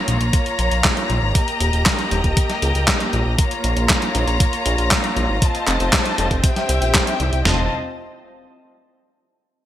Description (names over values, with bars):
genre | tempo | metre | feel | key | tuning
italo disco | 118 BPM | 4/4 | straight | unclear | A4 = 442 Hz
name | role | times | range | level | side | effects
rich studio string section | sustained chords | 0.0-7.7 s | Bb3 to Bb5 | -22 LUFS | left 2 dB | none
fat analog bass | bass | 0.1-7.7 s | Eb1 to Db2 | -22 LUFS | equal | none
clean 12-bit digital drum machine | drums | 0.1-7.4 s | handclaps, hi-hat, snare drum | -20 LUFS | equal | gated reverb
clean 12-bit digital drum machine | drums | 0.3-7.6 s | kick drum, snare drum, toms | -19 LUFS | equal | gated reverb
room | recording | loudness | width
moderate plate reverb, RT60 2.2 s | bright 1980s-style digital production | -16 LUFS | side -12 dB against mid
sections
0.0-7.5 A section; 7.5-9.5 B section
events
none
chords
0.0 Bbm; 1.4 Eb; 3.4 Bbm; 5.4 F7; 6.4 C; 7.5 F7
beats
0.34 0.84 | 1.35 1.86 2.37 2.88 | 3.39 3.89 4.40 4.91 | 5.42 5.93 6.44 6.95 | 7.45